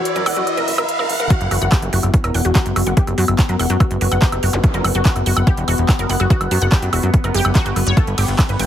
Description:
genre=psychedelic trance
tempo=144 BPM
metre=4/4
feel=straight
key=unclear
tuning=A4 = 441 Hz
part: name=overtone-sweeping drone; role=sustained chords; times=0.0-8.7 s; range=E3 to E4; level=-24 LUFS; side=left 3 dB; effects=chorus, built-in reverb, sidechain pumping
part: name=riser and zap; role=sound effects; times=0.0-1.3, 4.5-4.6 s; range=none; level=-24 LUFS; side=equal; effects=none
part: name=big-room dance drum kit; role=drums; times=0.1-8.7 s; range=handclaps, hi-hat, ride cymbal, woodblock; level=-23 LUFS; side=right 2 dB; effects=high-pass filter on hats, high-pass filter on perc, high-pass filter on snare, high-pass filter on cymbals, high-pass filter on room
part: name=wide unison pluck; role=riff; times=0.2-8.6 s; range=F#4 to G5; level=-23 LUFS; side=right 1 dB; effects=auto-pan, sidechain pumping, dub echo
part: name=plucky analog bass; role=bass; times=0.2-8.7 s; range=E1 to F#2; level=-19 LUFS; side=equal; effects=none
part: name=electronic kick drum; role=drums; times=1.3-8.5 s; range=none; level=-14 LUFS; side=equal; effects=none
room=light reverb, digital ambience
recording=heavily compressed radio sound, high-pass filter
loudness=-14 LUFS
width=side -11 dB against mid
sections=0.0-1.3 A section; 1.3-8.7 B section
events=build-up 0.0-1.3; riser 0.0-1.3; drop 1.3-8.7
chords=0.0 Esus2; 1.3 F#5; 8.0 G5

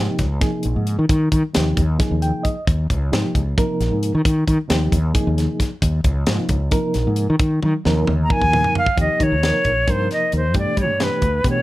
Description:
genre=electric jazz fusion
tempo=266 BPM (eighths)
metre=7/8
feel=straight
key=Eb mixolydian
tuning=A4 = 442 Hz
part: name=reed electric piano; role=accompaniment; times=0.0-11.6 s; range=B2 to G5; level=-23 LUFS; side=right 1 dB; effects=overdrive, fast tremolo
part: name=fretless electric bass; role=bass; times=0.0-11.6 s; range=Bb1 to G3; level=-19 LUFS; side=equal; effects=none
part: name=tight funk drum kit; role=drums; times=0.2-11.6 s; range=hi-hat, kick drum, snare drum, toms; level=-21 LUFS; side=equal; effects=none
part: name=bright silver concert flute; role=melody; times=8.2-11.6 s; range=B4 to Bb5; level=-19 LUFS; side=equal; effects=none
room=light reverb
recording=none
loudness=-16 LUFS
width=side -17 dB against mid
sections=0.0-9.0 A section; 9.0-11.6 B section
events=reed electric piano fill 2.0-2.7; drum fill 7.6-9.0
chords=0.0 Ebsus4; 9.0 Eb13; 10.6 G

